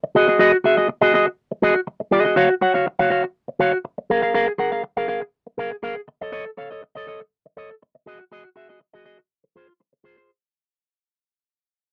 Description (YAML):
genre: disco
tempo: 121 BPM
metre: 4/4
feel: straight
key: unclear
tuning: A4 = 440 Hz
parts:
  - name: electric guitar with an envelope filter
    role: accompaniment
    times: 0.0-10.3 s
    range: F4 to Gb5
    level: -20 LUFS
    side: equal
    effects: none
room: light reverb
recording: dry, close 1970s-style studio recording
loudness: -20 LUFS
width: mono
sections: 0.0-10.3 A section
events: fade-out 0.0-10.3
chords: 0.1 Emaj9 (rootless); 2.4 Dbadd11/Gb; 4.1 Gbmaj9 (rootless); 6.1 F7b13/A (rootless); 8.1 Emaj9 (rootless); 9.3 Fm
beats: | 0.39 0.88 1.38 1.87 | 2.37 2.86 3.36 3.85 | 4.35 4.84 5.34 5.83 | 6.33 6.82 7.32 7.81 | 8.31 8.80 9.30 9.79